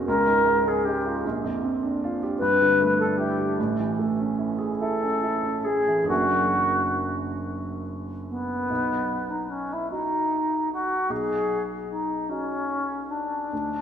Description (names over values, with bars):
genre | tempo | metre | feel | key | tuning
classical, impressionist duo for alto flute and grand piano | 44-52 BPM (dotted quarters) | 6/8 | rubato | unclear | A4 = 440 Hz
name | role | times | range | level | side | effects
dark baby grand piano | accompaniment | 0.0-13.8 s | F#1 to G#4 | -27 LUFS | right 2 dB | none
alto flute | melody | 0.1-13.8 s | B3 to B4 | -24 LUFS | left 1 dB | none
room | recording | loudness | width
wet concert hall reverb, RT60 2.6 s | dark, warm production | -22 LUFS | side -8 dB against mid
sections
0.0-8.7 A section; 8.7-13.8 B section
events
none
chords
0.1 C#69; 1.2 A#69; 2.4 G69; 3.6 Amaj7; 6.1 F#aug7; 8.7 B